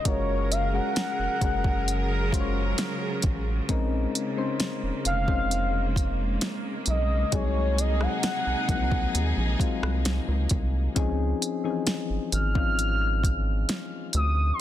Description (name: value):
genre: contemporary R&B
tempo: 66 BPM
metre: 4/4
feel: straight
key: unclear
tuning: A4 = 440 Hz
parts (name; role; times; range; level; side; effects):
- gliding portamento lead; melody; 0.0-14.6 s; Db5 to F6; -30 LUFS; equal; chorus, ping-pong delay
- soft electric-piano-like synth keys; accompaniment; 0.0-14.6 s; C3 to Db5; -31 LUFS; left 7 dB; chorus
- warm studio string section; sustained chords; 0.0-10.9 s; C3 to Bb4; -34 LUFS; right 3 dB; sidechain pumping
- rubbery square bass; bass; 0.1-14.5 s; F1 to Eb2; -27 LUFS; right 1 dB; none
- smooth R&B drum kit; drums; 0.1-14.3 s; hi-hat, kick drum, rim click, snare drum; -28 LUFS; equal; none
room: little or no reverb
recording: dense, heavily limited modern master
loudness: -24 LUFS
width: side -12 dB against mid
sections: 0.0-11.0 A section; 11.0-14.6 A section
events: none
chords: 0.1 Gbmaj9; 3.7 Bbm11; 7.3 Ab7/C; 11.0 Dbmaj9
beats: | 0.05 0.96 1.87 2.78 | 3.69 4.60 5.51 6.42 | 7.33 8.23 9.14 10.05 | 10.96 11.87 12.78 13.69 | 14.60